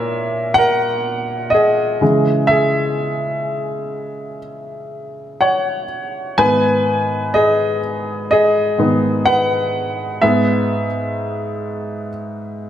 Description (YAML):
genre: pop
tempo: 62 BPM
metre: 4/4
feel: straight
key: G# minor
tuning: A4 = 445 Hz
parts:
  - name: warm baby grand piano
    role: solo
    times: 0.0-12.7 s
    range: G#2 to A#5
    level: -16 LUFS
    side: equal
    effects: none
room: moderate concert hall reverb, RT60 2.1 s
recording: none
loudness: -15 LUFS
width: side -10 dB against mid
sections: 0.0-12.7 A section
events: grand piano solo 0.0-12.7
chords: 0.0 F#7/A#; 2.0 C#m; 6.4 G#m; 10.2 E/G#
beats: 0.57 1.54 | 2.50 3.46 4.43 5.40 | 6.38 7.34 8.31 9.26 | 10.22 11.18 12.13